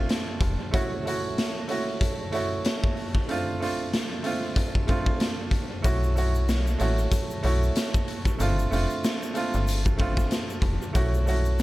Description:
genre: hip hop, boom-bap hip-hop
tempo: 94 BPM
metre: 4/4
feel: swing 58% on 16ths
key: B minor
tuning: A4 = 440 Hz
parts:
  - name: warm upright piano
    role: accompaniment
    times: 0.0-11.6 s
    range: A3 to F#4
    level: -29 LUFS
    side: right 2 dB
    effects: cassette tape, high-pass filter, low-pass filter
  - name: metallic FM bass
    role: bass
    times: 0.0-0.6, 5.8-11.6 s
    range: F1 to B1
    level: -24 LUFS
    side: equal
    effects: none
  - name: raw garage drum kit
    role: drums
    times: 0.1-11.6 s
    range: hi-hat, kick drum, snare drum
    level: -26 LUFS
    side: equal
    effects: none
  - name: tube shaker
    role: percussion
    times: 5.8-11.6 s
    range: none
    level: -45 LUFS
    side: left 4 dB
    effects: none
room: little or no reverb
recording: echo-heavy mix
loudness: -23 LUFS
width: side -18 dB against mid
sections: 0.0-11.6 A section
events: none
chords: 0.0 G9sus4 (rootless); 0.7 A6; 3.3 F6/A; 5.8 B9sus4; 8.4 G9sus4; 11.0 B9sus4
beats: 0.10 | 0.74 1.38 2.02 2.65 | 3.29 3.93 4.57 5.21 | 5.85 6.48 7.12 7.76 | 8.40 9.04 9.68 10.31 | 10.95 11.59

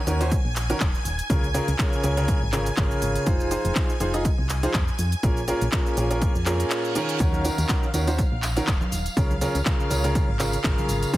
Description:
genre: piano house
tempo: 122 BPM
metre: 4/4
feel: swing 55% on 16ths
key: unclear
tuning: A4 = 440 Hz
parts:
  - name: string machine, violins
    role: sustained chords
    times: 0.0-11.2 s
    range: F5 to Ab6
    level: -34 LUFS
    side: equal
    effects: ensemble chorus, sidechain pumping
  - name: clear baby grand piano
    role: riff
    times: 0.1-11.2 s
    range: Bb2 to Eb5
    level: -26 LUFS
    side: equal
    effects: sidechain pumping, digital delay
  - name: solid FM bass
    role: bass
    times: 0.1-11.2 s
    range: Eb1 to F2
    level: -26 LUFS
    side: equal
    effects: sidechain pumping
  - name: house drum kit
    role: drums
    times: 0.1-11.2 s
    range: handclaps, hi-hat, shaker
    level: -31 LUFS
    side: equal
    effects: none
  - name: electronic kick drum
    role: drums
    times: 0.3-11.2 s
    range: none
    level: -24 LUFS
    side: equal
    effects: none
  - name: reverse cymbal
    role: sound effects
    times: 6.4-7.2 s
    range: none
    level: -35 LUFS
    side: right 7 dB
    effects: none
  - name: tambourine and congas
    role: percussion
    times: 7.2-11.2 s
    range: none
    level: -34 LUFS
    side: right 1 dB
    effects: none
room: digital ambience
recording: heavily compressed radio sound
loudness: -21 LUFS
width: side -16 dB against mid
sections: 0.0-11.2 A section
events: reverse cymbal 6.4-7.2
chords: 0.0 Ebm7; 1.3 Db6; 3.3 Fm7; 5.2 Bbm7; 7.2 Ebm7; 9.2 Db6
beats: 0.32 0.81 | 1.30 1.79 2.28 2.77 | 3.27 3.76 4.25 4.74 | 5.23 5.72 6.22 6.71 | 7.20 7.69 8.18 8.68 | 9.17 9.66 10.15 10.64 | 11.13

